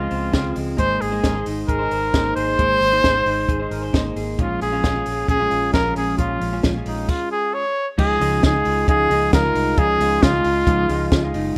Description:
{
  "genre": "jangly indie pop",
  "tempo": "133 BPM",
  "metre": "4/4",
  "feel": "straight",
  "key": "Db major",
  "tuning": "A4 = 440 Hz",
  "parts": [
    { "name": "clear trumpet", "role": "melody", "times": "0.0-11.3 s", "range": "Eb4 to Db5", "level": "-22 LUFS", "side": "equal", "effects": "slapback echo" },
    { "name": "twelve-string electric guitar", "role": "accompaniment", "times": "0.0-11.6 s", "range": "Bb2 to C5", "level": "-29 LUFS", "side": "equal", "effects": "none" },
    { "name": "electric guitar through a small old amp", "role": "arpeggios", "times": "0.0-11.6 s", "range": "Bb2 to C5", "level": "-30 LUFS", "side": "equal", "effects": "none" },
    { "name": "vintage muted fingered electric bass", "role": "bass", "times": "0.0-11.5 s", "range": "Gb1 to Db2", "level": "-29 LUFS", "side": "equal", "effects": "none" },
    { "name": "compact cocktail drum kit", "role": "drums", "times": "0.1-11.4 s", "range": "crash cymbal, hi-hat, kick drum, snare drum", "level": "-22 LUFS", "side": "equal", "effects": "none" }
  ],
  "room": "light reverb, studio ambience",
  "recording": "rough home demo mix",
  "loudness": "-19 LUFS",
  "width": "mono",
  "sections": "0.0-8.0 A section; 8.0-11.6 B section",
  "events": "none",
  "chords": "0.0 Dbmaj7; 0.8 Abadd9; 4.4 Bbm7; 8.0 Dbadd9",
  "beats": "0.34 | 0.79 1.24 1.69 2.13 | 2.58 3.04 3.49 3.94 | 4.39 4.84 5.29 5.74 | 6.19 6.64 7.09 7.54 | 7.98 8.43 8.88 9.33 | 9.78 10.22 10.67 11.12 | 11.56"
}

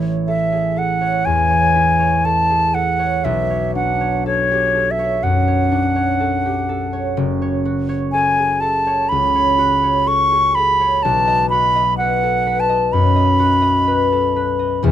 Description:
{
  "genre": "classical, impressionist duo for flute and harp",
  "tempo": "62 BPM",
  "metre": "4/4",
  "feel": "rubato",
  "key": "unclear",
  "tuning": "A4 = 440 Hz",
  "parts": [
    { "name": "concert harp", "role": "accompaniment", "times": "0.0-14.9 s", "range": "E1 to D#5", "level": "-18 LUFS", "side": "left 1 dB", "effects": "none" },
    { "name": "concert flute", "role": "melody", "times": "0.3-14.8 s", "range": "C#5 to C#6", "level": "-16 LUFS", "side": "equal", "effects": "none" }
  ],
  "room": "little or no reverb",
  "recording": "close, detailed microphones",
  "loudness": "-14 LUFS",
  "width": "side -10 dB against mid",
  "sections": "0.0-14.9 A section",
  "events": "none",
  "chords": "0.0 Amaj7; 3.2 Bm9; 7.2 F#madd9; 11.0 Badd9",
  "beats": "0.27 1.26 2.25 | 3.25 4.25 5.22 6.20 | 7.17 8.13 9.10 10.07 | 11.04 11.99 12.92 13.87 | 14.83"
}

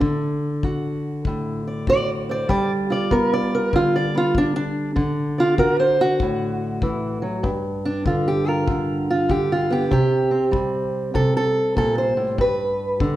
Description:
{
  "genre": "acoustic country blues, solo or duo",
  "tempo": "97 BPM",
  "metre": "4/4",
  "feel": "swing 65% on 8ths",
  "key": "unclear",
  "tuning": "A4 = 440 Hz",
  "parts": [
    { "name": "fingerpicked steel-string acoustic guitar", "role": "melody", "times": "0.0-13.2 s", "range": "G2 to D5", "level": "-19 LUFS", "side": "right 1 dB", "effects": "none" },
    { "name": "kick drum", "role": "drums", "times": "0.0-13.2 s", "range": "none", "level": "-28 LUFS", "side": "left 2 dB", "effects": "none" }
  ],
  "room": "moderate recital hall reverb, RT60 1.4 s",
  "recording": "recorded in a church or concert hall",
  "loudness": "-19 LUFS",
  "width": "side -14 dB against mid",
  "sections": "0.0-7.4 A section; 7.4-13.2 A section",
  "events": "steel-string acoustic guitar solo 0.0-7.4, 7.4-13.2",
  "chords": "0.0 D; 2.5 G7; 5.0 D; 7.4 G7(no3); 9.9 C5; 12.4 G",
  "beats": "| 0.02 0.64 1.26 1.88 | 2.50 3.12 3.73 4.35 | 4.97 5.59 6.21 6.82 | 7.44 8.06 8.68 9.30 | 9.91 10.53 11.15 11.77 | 12.38 13.00"
}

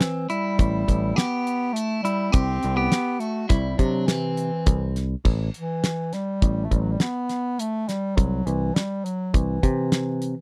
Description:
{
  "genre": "progressive instrumental, band music in an uneven meter",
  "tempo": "103 BPM",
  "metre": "5/4",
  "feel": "straight",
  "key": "A dorian",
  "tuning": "A4 = 440 Hz",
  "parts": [
    { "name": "warm bass clarinet", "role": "melody", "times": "0.0-10.4 s", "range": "E3 to C4", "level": "-29 LUFS", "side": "equal", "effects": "none" },
    { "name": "clean electric guitar", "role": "second line", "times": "0.0-5.0 s", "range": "C4 to G4", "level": "-32 LUFS", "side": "equal", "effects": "none" },
    { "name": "damped 70s drum kit", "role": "drums", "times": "0.0-10.4 s", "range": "crash cymbal, hi-hat, kick drum, snare drum", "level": "-24 LUFS", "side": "equal", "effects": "none" },
    { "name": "picked electric bass", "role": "bass", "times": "0.6-10.3 s", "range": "A1 to C3", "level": "-27 LUFS", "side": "equal", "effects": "none" }
  ],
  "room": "little or no reverb",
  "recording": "dry, close 1970s-style studio recording",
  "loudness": "-24 LUFS",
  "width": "mono",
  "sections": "0.0-5.3 A section; 5.3-10.4 B section",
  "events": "none",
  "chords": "0.0 A7(no3); 2.3 C; 5.3 A5; 8.2 C",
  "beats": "0.01 0.59 1.18 1.76 | 2.34 2.92 3.51 4.09 4.67 | 5.26 5.84 6.42 7.01 7.59 | 8.18 8.76 9.34 9.92"
}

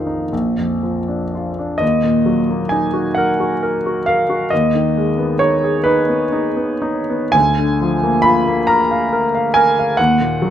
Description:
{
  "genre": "classical, romantic nocturne for solo piano",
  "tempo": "38-48 BPM (dotted quarters)",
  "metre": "12/8",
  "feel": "rubato",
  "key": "Eb minor",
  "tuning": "A4 = 438 Hz",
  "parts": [
    { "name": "clear grand piano", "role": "solo", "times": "0.0-10.5 s", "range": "Bb1 to Cb6", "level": "-14 LUFS", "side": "equal", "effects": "none" }
  ],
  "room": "moderate recital hall reverb, RT60 1.5 s",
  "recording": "close, detailed microphones",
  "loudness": "-14 LUFS",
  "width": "side -10 dB against mid",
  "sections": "0.0-1.8 A section; 1.8-10.5 B section",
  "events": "none",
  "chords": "0.3 Bb; 1.8 Ebm; 4.5 Abm/Eb; 7.3 Bb7/D; 10.0 Ebm",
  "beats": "0.32 | 1.82 3.16 4.52 5.86 | 7.35 8.68 9.98"
}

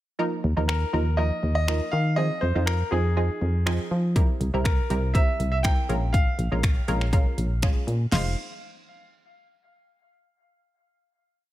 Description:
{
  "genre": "dance-pop",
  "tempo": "121 BPM",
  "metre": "4/4",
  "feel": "straight",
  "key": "F minor",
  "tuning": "A4 = 440 Hz",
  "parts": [
    { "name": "punchy chord stab", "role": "accompaniment", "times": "0.2-8.4 s", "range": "F3 to C5", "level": "-30 LUFS", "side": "right 2 dB", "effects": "chorus, sidechain pumping" },
    { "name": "solid FM bass", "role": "bass", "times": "0.4-8.4 s", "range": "F1 to F3", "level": "-24 LUFS", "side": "equal", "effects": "sidechain pumping" },
    { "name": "clear baby grand piano", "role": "melody", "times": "0.7-8.4 s", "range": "Ab4 to G5", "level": "-30 LUFS", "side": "equal", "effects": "dub echo" },
    { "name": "pop drum kit", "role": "drums", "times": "0.7-8.2 s", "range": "crash cymbal, finger snaps, hi-hat, kick drum, snare drum", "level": "-24 LUFS", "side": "equal", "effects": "none" }
  ],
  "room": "little or no reverb",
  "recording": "none",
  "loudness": "-22 LUFS",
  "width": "side -15 dB against mid",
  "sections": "0.2-8.1 verse; 8.1-10.1 final chord",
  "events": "none",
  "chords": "0.2 Ebsus2; 2.2 Fm7; 4.2 C7; 5.9 Bbm7; 8.1 Fm7",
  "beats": "| 0.19 0.69 1.18 1.68 | 2.17 2.67 3.17 3.66 | 4.16 4.65 5.15 5.64 | 6.14 6.64 7.13 7.63 | 8.12"
}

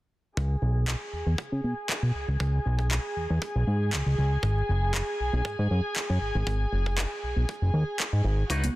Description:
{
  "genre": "nu-disco, nu disco",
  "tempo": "118 BPM",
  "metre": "4/4",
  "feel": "swing 53% on 16ths",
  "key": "C# minor",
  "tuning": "A4 = 437 Hz",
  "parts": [
    { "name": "dark chamber string section", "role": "sustained chords", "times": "0.4-8.8 s", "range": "F#4 to G#5", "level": "-33 LUFS", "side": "equal", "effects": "sidechain pumping, low-pass filter" },
    { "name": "fat analog bass", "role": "bass", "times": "0.4-8.7 s", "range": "F#1 to C#3", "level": "-25 LUFS", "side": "equal", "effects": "tube saturation" },
    { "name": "kick drum", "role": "drums", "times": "0.4-8.6 s", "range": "none", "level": "-36 LUFS", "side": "equal", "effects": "high-pass filter on kick, studio reverb, soft clipping on snare, high-pass filter on snare, high-pass filter on room" },
    { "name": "house drum kit", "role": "drums", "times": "0.9-8.7 s", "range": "handclaps, hi-hat", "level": "-33 LUFS", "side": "equal", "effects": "overdrive, studio reverb" },
    { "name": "electric guitar with an envelope filter", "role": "riff", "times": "8.5-8.6 s", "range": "D#4 to B4", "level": "-31 LUFS", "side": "left 1 dB", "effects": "wide subtle chorus" },
    { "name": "congas", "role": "percussion", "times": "8.6-8.7 s", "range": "none", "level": "-31 LUFS", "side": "right 3 dB", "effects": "none" }
  ],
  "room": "light reverb, small room ambience",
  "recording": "dense, heavily limited modern master",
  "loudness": "-25 LUFS",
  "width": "side -18 dB against mid",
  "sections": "0.4-8.8 A section",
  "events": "filter sweep on string section 0.4-8.8",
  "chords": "0.4 C#m7; 4.4 G#m7",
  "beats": "| 0.37 0.88 1.39 1.90 | 2.40 2.91 3.42 3.93 | 4.44 4.95 5.45 5.96 | 6.47 6.98 7.49 8.00 | 8.51"
}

